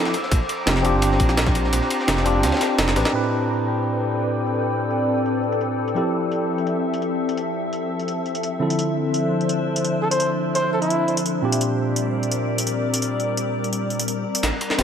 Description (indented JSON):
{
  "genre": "liquid drum and bass",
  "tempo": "170 BPM",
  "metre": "4/4",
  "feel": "straight",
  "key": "unclear",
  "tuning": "A4 = 440 Hz",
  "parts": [
    { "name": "bright tine electric piano", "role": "accompaniment", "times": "0.0-14.8 s", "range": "A2 to B4", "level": "-24 LUFS", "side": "equal", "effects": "medium stereo tremolo, digital delay" },
    { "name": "glassy FM pad", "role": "sustained chords", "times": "0.0-14.8 s", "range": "F3 to E6", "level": "-24 LUFS", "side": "left 2 dB", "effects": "ensemble chorus, built-in reverb" },
    { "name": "crunchy breakbeat drum kit", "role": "drums", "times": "0.1-3.1, 14.4-14.8 s", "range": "ride cymbal, snare drum", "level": "-30 LUFS", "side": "equal", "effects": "high-pass filter on cymbals, high-pass filter on snare, high-pass filter on room" },
    { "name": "jungle sampler-style drum kit", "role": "drums", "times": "0.1-14.8 s", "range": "hi-hat, snare drum, tambourine", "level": "-25 LUFS", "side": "equal", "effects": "overdrive, low-pass filter on hats, low-pass filter on snare, low-pass filter on perc, low-pass filter on room" },
    { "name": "dark detuned saw bass", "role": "bass", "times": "0.3-3.0, 14.4-14.8 s", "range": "E1 to D2", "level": "-22 LUFS", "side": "equal", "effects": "none" },
    { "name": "electronic kick drum", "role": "drums", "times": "0.3-1.5 s", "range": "none", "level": "-20 LUFS", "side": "equal", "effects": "overdrive" },
    { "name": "trumpet with bucket mute", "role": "melody", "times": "10.0-11.2 s", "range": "E4 to C5", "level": "-25 LUFS", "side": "equal", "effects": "digital delay" }
  ],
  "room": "moderate plate reverb, RT60 2.0 s, small room ambience",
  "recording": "none",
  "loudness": "-19 LUFS",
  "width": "side -8 dB against mid",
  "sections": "0.0-3.1 A section; 3.1-14.4 B section",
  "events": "kick drops out 1.7-3.1; drum fill 2.9, 14.4-14.8; band accent 3.1; filter sweep on drum 3.1-14.4; filter sweep on ambient pad 3.1-14.4",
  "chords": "0.1 Bb69; 3.1 Am11; 6.0 Fmaj7; 8.6 Dm9; 11.4 Bb69",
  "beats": "| 0.32 0.67 1.02 1.37 | 1.73 2.08 2.43 2.79 | 3.14 3.49 3.85 4.20 | 4.55 4.90 5.26 5.61 | 5.96 6.32 6.67 7.02 | 7.37 7.73 8.08 8.43 | 8.79 9.14 9.49 9.85 | 10.20 10.55 10.90 11.26 | 11.61 11.96 12.31 12.67 | 13.02 13.37 13.73 14.08 | 14.43 14.79"
}